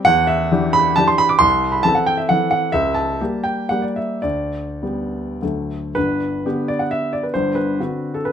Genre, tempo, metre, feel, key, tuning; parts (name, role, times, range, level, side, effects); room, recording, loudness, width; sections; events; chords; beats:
classical, romantic triple-time dance for piano with dotted rhythms; 97-145 BPM; 3/4; rubato; G major; A4 = 437 Hz
warm baby grand piano; solo; 0.0-8.3 s; G1 to D6; -16 LUFS; equal
moderate large studio reverb, RT60 0.7 s; close, detailed microphones; -17 LUFS; side -8 dB against mid
0.0-6.0 A section; 6.0-8.3 B section
0.1 Em7; 1.4 Am/C; 2.7 C#dim7; 4.2 G/D; 5.4 D; 6.0 G; 7.3 D7/G
| 0.07 0.52 0.97 | 1.42 1.85 2.30 | 2.74 3.20 3.71 | 4.24 4.83 5.42 | 5.96 6.45 6.92 | 7.34 7.79 8.26